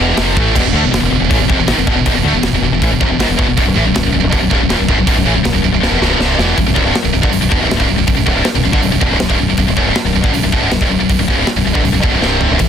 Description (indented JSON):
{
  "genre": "heavy metal",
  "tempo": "159 BPM",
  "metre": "4/4",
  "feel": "straight",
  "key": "unclear",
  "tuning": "A4 = 443 Hz",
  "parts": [
    { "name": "heavy high-gain guitar", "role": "riff", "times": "0.0-12.7 s", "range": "B1 to A3", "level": "-16 LUFS", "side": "right 12 dB", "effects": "distortion" },
    { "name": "tight distorted guitar", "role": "riff", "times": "0.0-12.7 s", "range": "B1 to A3", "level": "-16 LUFS", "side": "left 12 dB", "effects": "distortion" },
    { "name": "growling fingered electric bass", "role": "bass", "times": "0.0-12.7 s", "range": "B0 to D2", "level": "-18 LUFS", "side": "equal", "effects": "overdrive" },
    { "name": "tight metal drum kit", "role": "drums", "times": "0.2-12.7 s", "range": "crash cymbal, hi-hat, kick drum, snare drum, toms", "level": "-17 LUFS", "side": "equal", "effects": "none" }
  ],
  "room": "small room ambience",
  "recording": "dense, heavily limited modern master",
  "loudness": "-11 LUFS",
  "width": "side -8 dB against mid",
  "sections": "0.0-6.6 A section; 6.6-12.7 B section",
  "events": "drum fill 5.8-6.6, 12.2-12.6",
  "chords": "0.0 E5; 3.6 B5"
}